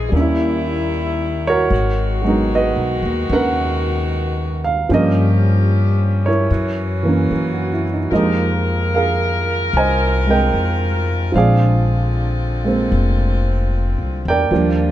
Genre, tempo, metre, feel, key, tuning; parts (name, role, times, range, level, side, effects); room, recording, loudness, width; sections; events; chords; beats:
jazz ballad; 75 BPM; 4/4; swing 66% on 8ths; A4 = 441 Hz
warm grand piano; accompaniment; 0.0-14.9 s; Fb3 to Ab5; -19 LUFS; right 3 dB
mellow saxophone section; sustained chords; 0.0-14.9 s; D3 to Bb4; -24 LUFS; left 2 dB
upright bass; bass; 0.0-14.9 s; F1 to G2; -18 LUFS; left 1 dB
little or no reverb; close, detailed microphones; -15 LUFS; side -13 dB against mid
0.0-14.9 A section
0.1 Eb7b9; 1.7 Abm9; 4.9 Gm7b5; 6.5 Gb7; 8.1 Fm11; 11.3 Bb9
0.12 0.92 | 1.71 2.50 3.29 4.09 | 4.89 5.69 6.49 7.30 | 8.11 8.91 9.72 10.52 | 11.32 12.12 12.92 13.71 | 14.51